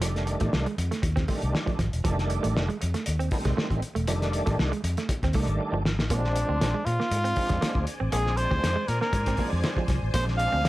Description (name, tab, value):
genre	funk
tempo	119 BPM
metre	4/4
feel	straight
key	unclear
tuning	A4 = 440 Hz
part	semi-hollow electric guitar	riff	0.0-10.6 s	F3 to C4	-34 LUFS	right 5 dB	spring reverb
part	overdriven tonewheel organ	stabs	0.0-10.7 s	Eb3 to D4	-32 LUFS	right 1 dB	chorus vibrato, slow rotary speaker
part	vintage muted fingered electric bass	bass	0.0-10.7 s	E1 to Bb2	-28 LUFS	equal	none
part	cloth-damped thuddy drum kit	drums	0.0-10.7 s	hi-hat, kick drum, snare drum	-29 LUFS	equal	none
part	warm trumpet	melody	6.1-10.7 s	D4 to F5	-28 LUFS	equal	none
part	string machine, full ensemble	sustained chords	6.1-10.7 s	C5 to Ab5	-37 LUFS	equal	phaser, ensemble chorus
room	little or no reverb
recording	none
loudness	-24 LUFS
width	side -17 dB against mid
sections	0.0-6.1 A section; 6.1-10.7 B section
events	drum fill 5.6-6.1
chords	0.0 F13; 6.1 Bb9